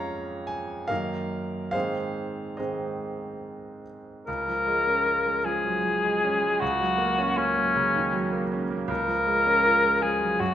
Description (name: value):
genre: classical, romantic duo for cor anglais and grand piano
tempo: 69-80 BPM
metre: 3/4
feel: rubato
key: Db major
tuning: A4 = 440 Hz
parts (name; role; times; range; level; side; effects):
- clear grand piano; accompaniment; 0.0-10.5 s; Db2 to Bb5; -28 LUFS; right 2 dB; none
- mellow cor anglais; melody; 4.3-10.5 s; Db4 to Bb4; -22 LUFS; left 2 dB; none
room: wet recital hall reverb, RT60 1.4 s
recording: none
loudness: -23 LUFS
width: side -11 dB against mid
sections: 0.0-4.3 A section; 4.3-10.5 B section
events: none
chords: 0.0 Db/F; 0.9 Ebm/Gb; 1.7 Ab; 4.3 Db; 6.6 Gb/Db; 8.9 Db